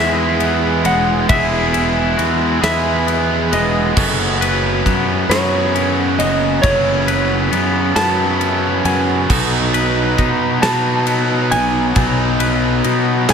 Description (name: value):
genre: post-rock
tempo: 45 BPM (dotted quarters)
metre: 6/8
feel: straight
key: unclear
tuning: A4 = 439 Hz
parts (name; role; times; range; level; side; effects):
- clean lap steel guitar; melody; 0.0-13.3 s; C#5 to A5; -21 LUFS; equal; analog delay
- electric guitar through a small old amp; arpeggios; 0.0-13.3 s; G#4 to C#5; -28 LUFS; right 5 dB; analog delay
- twangy electric guitar; arpeggios; 0.0-13.3 s; E2 to B4; -24 LUFS; left 4 dB; analog delay
- biting overdriven guitar; riff; 0.0-13.3 s; F#2 to G#4; -18 LUFS; right 1 dB; none
- fuzz fingered electric bass; bass; 0.0-13.3 s; E1 to B2; -20 LUFS; equal; overdrive
- big rock drum kit; drums; 0.4-13.3 s; crash cymbal, kick drum, ride cymbal, snare drum; -22 LUFS; equal; none
room: light reverb, studio reverb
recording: none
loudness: -13 LUFS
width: side -7 dB against mid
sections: 0.0-13.3 A section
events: none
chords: 0.0 C#m7/E; 4.0 F#sus4; 9.3 B